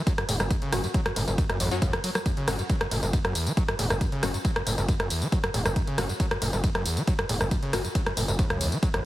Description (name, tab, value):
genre	driving peak-time techno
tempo	137 BPM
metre	4/4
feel	straight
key	F# phrygian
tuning	A4 = 438 Hz
part	screaming distorted acid line	riff	0.0-9.0 s	E2 to F#3	-30 LUFS	equal	distortion, chorus, sidechain pumping, tape echo
part	electronic kick drum	drums	0.1-8.9 s	none	-26 LUFS	equal	none
part	punchy analog drum machine	drums	0.1-9.0 s	hi-hat, ride cymbal, rim click, tambourine	-29 LUFS	equal	none
part	gritty driven synth bass	bass	0.3-9.1 s	E1 to C#2	-29 LUFS	equal	distortion, sidechain pumping
part	rave stab	stabs	0.7-7.8 s	F#3 to F#4	-36 LUFS	left 3 dB	chorus, built-in reverb, sidechain pumping, tape echo
room	light reverb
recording	heavily compressed radio sound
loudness	-24 LUFS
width	side -15 dB against mid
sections	0.0-9.1 A section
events	none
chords	0.0 F#5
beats	0.07 | 0.51 0.94 1.38 1.82 | 2.26 2.69 3.13 3.57 | 4.01 4.45 4.88 5.32 | 5.76 6.20 6.64 7.08 | 7.51 7.95 8.39 8.83